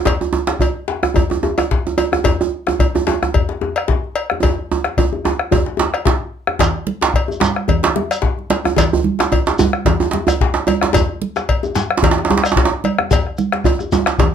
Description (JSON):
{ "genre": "west african traditional, West African drum ensemble", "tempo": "110 BPM", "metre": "4/4", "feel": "swing 55% on 16ths", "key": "none", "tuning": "none", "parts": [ { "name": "bombo", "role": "percussion", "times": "0.1-14.3 s", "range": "none", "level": "-19 LUFS", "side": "left 3 dB", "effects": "none" }, { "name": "cowbell", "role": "percussion", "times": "0.1-14.3 s", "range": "none", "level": "-22 LUFS", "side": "left 4 dB", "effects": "none" }, { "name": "djembe", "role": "percussion", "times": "0.1-14.3 s", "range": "none", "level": "-23 LUFS", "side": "left 6 dB", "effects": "none" }, { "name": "djembe", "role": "percussion", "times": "0.1-14.3 s", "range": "none", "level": "-17 LUFS", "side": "right 6 dB", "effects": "none" }, { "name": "congas", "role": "percussion", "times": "6.6-14.3 s", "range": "none", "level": "-21 LUFS", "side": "right 6 dB", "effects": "none" }, { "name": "shekere", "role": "percussion", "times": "6.6-14.3 s", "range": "none", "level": "-26 LUFS", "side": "right 1 dB", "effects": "none" } ], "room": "moderate studio reverb, RT60 0.5 s", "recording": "none", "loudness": "-15 LUFS", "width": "side -8 dB against mid", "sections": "0.0-6.6 A section; 6.6-14.3 B section", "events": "drum fill 4.4-6.6", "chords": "none" }